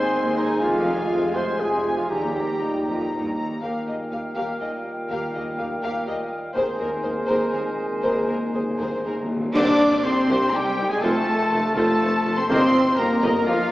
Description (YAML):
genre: cinematic, heroic adventure film score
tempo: 122 BPM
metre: 3/4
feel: straight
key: Eb major, C minor from 9.6 s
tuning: A4 = 440 Hz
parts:
  - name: rich symphonic violin section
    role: melody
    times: 0.0-13.7 s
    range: Bb4 to D6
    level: -29 LUFS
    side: left 1 dB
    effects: none
  - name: rich studio violin section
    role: second line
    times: 0.0-13.7 s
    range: Ab4 to D6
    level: -33 LUFS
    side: left 1 dB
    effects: none
  - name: warm clarinet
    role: second line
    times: 0.0-9.3 s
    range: Eb4 to C5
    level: -29 LUFS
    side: equal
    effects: none
  - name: clear symphonic viola section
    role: accompaniment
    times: 0.0-13.6 s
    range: G3 to Eb5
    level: -32 LUFS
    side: right 1 dB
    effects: none
  - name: clear trombone section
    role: sustained chords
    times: 0.0-12.7 s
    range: Bb2 to C4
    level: -33 LUFS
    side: right 1 dB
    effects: none
  - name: dark French horn section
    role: sustained chords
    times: 0.0-13.7 s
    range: F3 to F4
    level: -26 LUFS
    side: left 1 dB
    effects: none
  - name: concert harp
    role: arpeggios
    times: 0.0-13.7 s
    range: F2 to Eb6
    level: -34 LUFS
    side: left 1 dB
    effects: none
  - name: warm trumpet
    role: stabs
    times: 0.0-3.1, 9.6-13.7 s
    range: Eb4 to D5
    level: -29 LUFS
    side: right 1 dB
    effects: none
  - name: rich symphonic cello section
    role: bass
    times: 0.0-13.7 s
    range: Eb2 to D4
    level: -30 LUFS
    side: equal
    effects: none
  - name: rich symphonic double bass section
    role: bass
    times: 0.0-13.6 s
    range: F1 to Eb2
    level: -35 LUFS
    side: equal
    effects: none
  - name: timpani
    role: percussion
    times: 2.1-2.8, 6.6-10.2, 12.5-13.2 s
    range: G2 to Eb3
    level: -32 LUFS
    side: left 1 dB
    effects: none
  - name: clear oboe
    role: second line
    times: 3.6-13.7 s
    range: F4 to F5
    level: -32 LUFS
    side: equal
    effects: none
  - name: mellow hollow small flute group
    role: second line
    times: 3.6-13.7 s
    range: F5 to D6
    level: -33 LUFS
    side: equal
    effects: none
  - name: cymbal swell, clash cymbals and concert bass drum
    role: percussion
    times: 6.6-10.5 s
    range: none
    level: -39 LUFS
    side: equal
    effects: none
  - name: mellow tuba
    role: bass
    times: 9.6-13.6 s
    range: F1 to C2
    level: -29 LUFS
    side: right 1 dB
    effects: none
room: wet scoring stage reverb, RT60 1.9 s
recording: heard from further back in the room, small speaker sound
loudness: -20 LUFS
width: side -16 dB against mid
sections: 0.0-3.6 A section; 3.6-9.6 B section; 9.6-13.7 C section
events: timpani fill 6.6-9.6; band accent 9.6-10.0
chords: 0.0 Ab/Eb; 0.6 Fm; 2.1 Eb; 6.6 Abadd9/Eb; 9.6 Cm; 11.0 F; 12.5 Eb/G